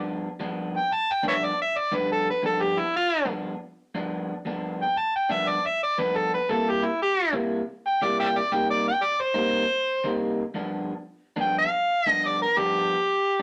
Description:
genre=blues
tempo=118 BPM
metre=4/4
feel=swing 63% on 8ths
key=G mixolydian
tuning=A4 = 443 Hz
part: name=overdriven harmonica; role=melody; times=0.0-13.4 s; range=E4 to A5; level=-25 LUFS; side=equal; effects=none
part: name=electric guitar through a small old amp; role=riff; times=0.0-13.4 s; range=G2 to E4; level=-32 LUFS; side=equal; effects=none
room=moderate studio reverb, RT60 0.7 s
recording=none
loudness=-25 LUFS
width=mono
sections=0.0-13.4 A section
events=harmonica solo 0.0-13.4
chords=0.0 G7; 6.5 C7; 8.5 Cm7; 10.5 G7

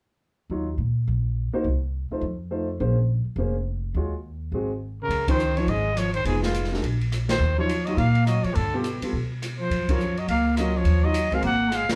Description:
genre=jazz, small-group swing and bop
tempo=209 BPM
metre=4/4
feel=swing 61% on 8ths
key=unclear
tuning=A4 = 443 Hz
part: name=warm upright piano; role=accompaniment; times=0.5-11.4 s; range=F3 to Db5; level=-31 LUFS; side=equal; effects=none
part: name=upright bass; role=bass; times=0.5-11.9 s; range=F1 to B2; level=-28 LUFS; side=equal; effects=none
part: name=breathy trumpet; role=melody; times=5.0-12.0 s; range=F4 to Gb5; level=-29 LUFS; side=equal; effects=none
part: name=trombone with metal mute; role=second line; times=5.0-12.0 s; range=Ab2 to Bb3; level=-30 LUFS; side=equal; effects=none
part: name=open jazz drum kit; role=drums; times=5.1-11.9 s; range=hi-hat, kick drum, ride cymbal, rim click, snare drum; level=-33 LUFS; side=equal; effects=none
room=wet club reverb, RT60 0.5 s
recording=heard from further back in the room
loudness=-25 LUFS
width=mono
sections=0.5-5.1 A section; 5.1-12.0 B section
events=band accent 5.2, 7.3, 9.8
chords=0.5 Ebm9; 1.7 Cmadd11; 2.2 F7; 2.8 Bbm9; 4.0 Ebm11; 4.5 Ab7; 5.1 Dbmaj9; 6.3 Fm7b5; 6.8 Bbsus4; 7.4 Ebm9; 8.6 G9; 9.7 Gbmaj7; 10.8 Ebm9; 11.4 Absus2

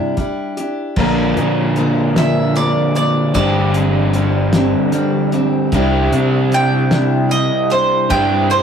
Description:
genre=folk rock and heartland rock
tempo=50 BPM (dotted quarters)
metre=6/8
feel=straight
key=C mixolydian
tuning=A4 = 441 Hz
part: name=picked steel-string acoustic guitar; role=accompaniment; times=0.0-8.6 s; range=G2 to Bb4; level=-19 LUFS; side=left 1 dB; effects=none
part: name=cloth-damped thuddy drum kit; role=drums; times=0.2-8.6 s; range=crash cymbal, hi-hat, kick drum, snare drum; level=-21 LUFS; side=left 1 dB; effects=none
part: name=crunchy overdriven guitar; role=riff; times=1.0-8.6 s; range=G2 to Bb4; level=-17 LUFS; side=right 1 dB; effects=spring reverb
part: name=picked electric bass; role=bass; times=1.0-8.6 s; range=G1 to C3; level=-19 LUFS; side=equal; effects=none
part: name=mandolin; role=melody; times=2.2-8.6 s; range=C5 to G5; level=-18 LUFS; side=right 2 dB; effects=none
room=moderate studio reverb, RT60 0.6 s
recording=rough rehearsal-room recording, warm saturation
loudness=-13 LUFS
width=side -7 dB against mid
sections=1.0-8.6 A section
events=mandolin solo 1.0-8.6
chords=0.0 Cadd9; 1.0 Bb; 3.3 Gsus4; 5.7 Cadd9

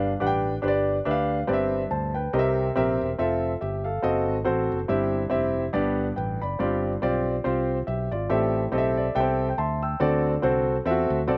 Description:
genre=uptempo gospel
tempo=141 BPM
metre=4/4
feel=swing 58% on 8ths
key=C major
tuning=A4 = 439 Hz
part: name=warm concert grand piano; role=accompaniment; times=0.0-11.4 s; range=G2 to E6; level=-26 LUFS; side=equal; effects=slapback echo
part: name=fingered electric bass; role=bass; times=0.0-11.4 s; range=E1 to E2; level=-32 LUFS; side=equal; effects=none
room=little or no reverb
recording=recorded outdoors, with no room sound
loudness=-25 LUFS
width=mono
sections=0.0-11.4 A section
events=grand piano fill 8.7-10.0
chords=0.0 G7; 1.5 Cmaj7/G; 2.3 C7; 3.2 Fmaj7; 4.0 F#dim7; 4.9 C/G; 5.7 G; 6.6 G7sus4; 8.3 Am7; 10.0 D7

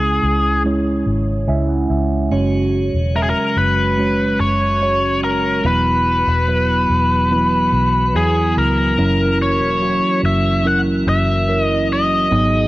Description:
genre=pop ballad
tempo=72 BPM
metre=4/4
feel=straight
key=unclear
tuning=A4 = 440 Hz
part: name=biting lead guitar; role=melody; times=0.0-12.7 s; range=G#4 to F#5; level=-18 LUFS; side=left 1 dB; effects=overdrive, cassette tape
part: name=mellow tine electric piano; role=accompaniment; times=0.0-12.7 s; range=G#2 to G#5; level=-19 LUFS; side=right 2 dB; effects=phaser, cassette tape
part: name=vintage muted fingered electric bass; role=bass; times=0.0-12.7 s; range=E1 to E2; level=-20 LUFS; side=equal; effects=none
part: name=tonewheel organ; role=sustained chords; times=2.3-12.7 s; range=C#3 to F#4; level=-26 LUFS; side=left 1 dB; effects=overdrive, slow rotary speaker, cassette tape
room=light reverb, digital ambience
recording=home recording on cassette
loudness=-14 LUFS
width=side -17 dB against mid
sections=0.0-9.0 A section; 9.0-12.7 B section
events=tine electric piano fill 1.1-2.3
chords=0.0 C#m; 2.3 F#sus2; 5.6 Esus2; 9.0 F#7

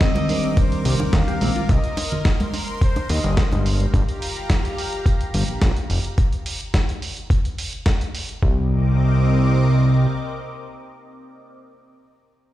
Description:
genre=nu-disco, nu disco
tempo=107 BPM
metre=4/4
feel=straight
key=C minor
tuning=A4 = 440 Hz
part: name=mellow trumpet section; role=melody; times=0.0-3.6 s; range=C5 to F5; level=-30 LUFS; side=equal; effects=vintage 12-bit sampler grit, dub echo
part: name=tine electric piano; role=accompaniment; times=0.0-1.7 s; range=D3 to Bb4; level=-25 LUFS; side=left 1 dB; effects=medium stereo tremolo, vintage 12-bit sampler grit, digital delay
part: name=lush unison pad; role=sustained chords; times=0.0-11.4 s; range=C4 to D6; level=-30 LUFS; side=equal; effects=chorus, phaser, sidechain pumping
part: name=mellow electric guitar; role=riff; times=0.0-1.6 s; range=C3 to C5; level=-29 LUFS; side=left 2 dB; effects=lush chorus, digital delay
part: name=dusty soul sampler-style drum kit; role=drums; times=0.0-8.4 s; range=hi-hat, snare drum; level=-27 LUFS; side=right 1 dB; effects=small room reverb
part: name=electronic kick drum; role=drums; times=0.0-8.5 s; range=none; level=-19 LUFS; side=equal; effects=small room reverb
part: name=bongos and congas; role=percussion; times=0.0-3.9 s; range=none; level=-28 LUFS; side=right 1 dB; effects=none
part: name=fat analog bass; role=bass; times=0.9-10.1 s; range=F1 to Eb2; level=-18 LUFS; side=equal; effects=none
room=little or no reverb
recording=played on a big sound system in a bare room, large studio reverb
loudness=-18 LUFS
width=side -14 dB against mid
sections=0.0-8.4 A section; 8.4-10.7 B section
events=drop 0.0-8.4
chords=0.0 Cm9; 3.7 Gm7; 8.4 Cm9

